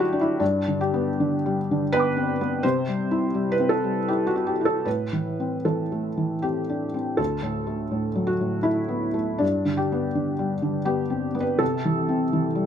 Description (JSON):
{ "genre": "neoclassical minimalist piano", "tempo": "74-85 BPM", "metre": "3/4", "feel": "rubato", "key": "unclear", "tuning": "A4 = 438 Hz", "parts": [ { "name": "felt-muted upright piano", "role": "solo", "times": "0.0-12.7 s", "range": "D2 to D6", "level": "-22 LUFS", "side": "equal", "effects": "none" } ], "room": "light reverb", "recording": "none", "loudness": "-22 LUFS", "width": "side -8 dB against mid", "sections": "0.0-12.7 A section", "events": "none", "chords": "0.4 G; 2.6 C; 4.9 Am; 7.2 D; 9.4 G; 11.6 C" }